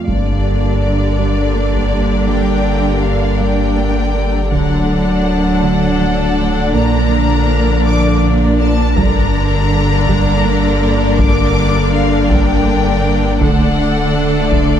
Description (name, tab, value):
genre	cinematic, hybrid orchestral and electronic film score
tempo	54 BPM (dotted quarters)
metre	6/8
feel	straight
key	G minor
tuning	A4 = 439 Hz
part	clear symphonic violin section	melody	0.0-14.8 s	D5 to D6	-23 LUFS	left 4 dB	none
part	hollow soft pad	sustained chords	0.0-14.8 s	D3 to A5	-20 LUFS	right 1 dB	chorus
part	bright symphonic violin section	second line	0.1-14.8 s	A4 to D5	-24 LUFS	left 3 dB	none
part	rich symphonic viola section	accompaniment	0.1-14.8 s	D3 to D4	-20 LUFS	equal	none
part	mellow French horn section	sustained chords	0.1-14.8 s	F#3 to D4	-21 LUFS	left 4 dB	none
part	soft round pluck	arpeggios	0.1-14.7 s	D3 to D4	-24 LUFS	right 3 dB	none
part	pure sine sub bass	bass	0.1-14.8 s	D1 to Bb1	-18 LUFS	equal	none
part	rich symphonic cello section	bass	0.1-14.8 s	D2 to Bb2	-20 LUFS	right 4 dB	none
part	taiko ensemble	drums	0.1-14.8 s	none	-19 LUFS	left 1 dB	none
room	moderate scoring stage reverb, RT60 1.4 s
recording	dark, warm production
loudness	-12 LUFS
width	side -9 dB against mid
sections	0.1-14.8 A section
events	none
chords	0.1 Gm; 4.5 D; 6.7 Bb; 9.0 Gm; 13.4 D